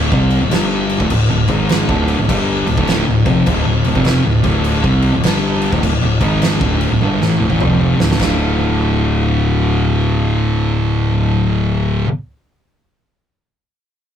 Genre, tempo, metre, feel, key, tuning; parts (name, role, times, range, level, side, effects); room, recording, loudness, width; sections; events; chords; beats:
stoner and doom metal; 102 BPM; 4/4; swing 64% on 8ths; D minor; A4 = 439 Hz
thick fuzz guitar; riff; 0.0-12.1 s; D2 to C4; -16 LUFS; left 3 dB; distortion
thick fuzz guitar; riff; 0.0-12.1 s; D2 to C4; -20 LUFS; right 5 dB; distortion
growling fingered electric bass; bass; 0.0-12.0 s; D1 to C2; -22 LUFS; right 1 dB; overdrive
oversized low-tuned drum kit; drums; 0.1-8.4 s; china cymbal, crash cymbal, kick drum, snare drum, toms; -19 LUFS; right 1 dB
moderate booth ambience, RT60 0.2 s; rough rehearsal-room recording; -13 LUFS; side -9 dB against mid
0.0-8.2 A section; 8.2-10.6 B section
drum fill 7.0-8.2
0.0 Dm; 8.2 D5
0.52 | 1.11 1.70 2.29 2.88 | 3.47 4.06 4.65 5.24 | 5.83 6.42 7.01 7.60 | 8.20 8.79 9.38 9.97